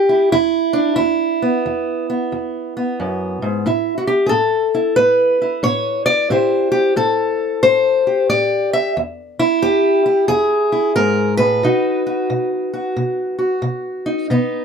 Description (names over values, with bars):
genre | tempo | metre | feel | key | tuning
acoustic country blues, solo or duo | 90 BPM | 4/4 | swing 64% on 8ths | unclear | A4 = 441 Hz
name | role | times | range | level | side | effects
fingerpicked steel-string acoustic guitar | solo | 0.0-14.6 s | E2 to E5 | -15 LUFS | equal | none
room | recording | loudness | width
light reverb | close, detailed microphones | -15 LUFS | side -6 dB against mid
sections
0.0-14.6 A section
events
none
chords
0.0 E5; 3.6 A5; 6.3 Am7; 9.0 E; 11.6 B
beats
0.32 | 0.98 1.65 2.31 2.98 | 3.64 4.31 4.97 5.63 | 6.30 6.96 7.63 8.30 | 8.96 9.63 10.29 10.96 | 11.62 12.29 12.96 13.62 | 14.29